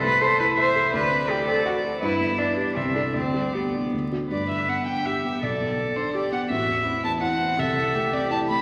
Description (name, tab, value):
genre	quick classical-period movement for piano trio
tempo	166 BPM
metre	3/4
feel	rubato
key	G major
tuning	A4 = 440 Hz
part	rich violin	melody	0.0-8.6 s	A4 to B5	-29 LUFS	equal	none
part	rich cello	second line	0.0-8.6 s	B3 to C5	-27 LUFS	equal	none
part	dark baby grand piano	accompaniment	0.0-8.6 s	A1 to F#5	-30 LUFS	equal	none
room	wet concert hall reverb, RT60 2.6 s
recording	vinyl crackle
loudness	-24 LUFS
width	mono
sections	0.0-4.3 A section; 4.3-8.6 B section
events	none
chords	0.0 Am/C; 0.9 D7; 2.0 G; 2.8 Am/C; 3.1 G/D; 3.9 D; 4.3 G; 5.4 G/B; 6.5 Am; 7.6 Am/C